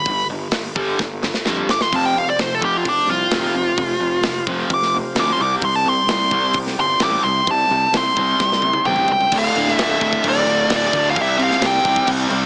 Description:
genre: hard rock.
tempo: 130 BPM.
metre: 4/4.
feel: straight.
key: unclear.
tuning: A4 = 440 Hz.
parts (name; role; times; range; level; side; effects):
nasal lead guitar with a parked wah; melody; 0.0-12.1 s; D4 to D6; -20 LUFS; equal; overdrive.
overdriven semi-hollow guitar; riff; 0.0-12.5 s; D2 to C4; -25 LUFS; equal; none.
fuzz fingered electric bass; bass; 0.1-12.5 s; D1 to F2; -30 LUFS; equal; overdrive.
tight metal drum kit; drums; 0.1-12.4 s; crash cymbal, hi-hat, kick drum, snare drum, splash cymbal, toms; -26 LUFS; equal; none.
overdriven tonewheel organ; sustained chords; 2.0-12.5 s; F3 to E5; -32 LUFS; equal; none.
room: light reverb, small room reverb.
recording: heavily compressed radio sound, multiband compression, small speaker sound.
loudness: -18 LUFS.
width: mono.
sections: 0.0-9.3 A section; 9.3-12.5 B section.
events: lead electric guitar solo 0.0-9.3; drum fill 1.0-1.9, 8.4-9.3.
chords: 0.0 G5; 1.9 F5; 5.4 C; 9.3 Dm; 11.2 C5.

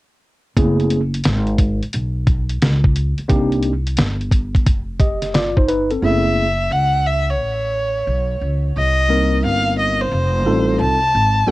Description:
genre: hip hop, jazz-hop.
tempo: 88 BPM.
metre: 4/4.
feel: swing 66% on 16ths.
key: unclear.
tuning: A4 = 441 Hz.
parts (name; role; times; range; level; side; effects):
tine electric piano; accompaniment; 0.6-11.5 s; G3 to D#5; -18 LUFS; equal; overdrive, medium stereo tremolo, cassette tape.
upright bass; bass; 0.6-11.5 s; F1 to C#2; -20 LUFS; equal; none.
dusty soul sampler-style drum kit; drums; 0.6-6.0 s; hi-hat, kick drum, snare drum; -17 LUFS; equal; cassette tape.
rich violin; melody; 6.0-11.5 s; C5 to A5; -18 LUFS; equal; cassette tape, tape echo.
room: light reverb.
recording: home recording on cassette.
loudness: -15 LUFS.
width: side -18 dB against mid.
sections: 0.6-6.0 A section; 6.0-11.5 B section.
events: none.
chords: 0.6 F#m11; 3.3 Cm7; 4.7 Fsus2; 6.0 F#m11; 8.7 Cm7; 10.1 F9.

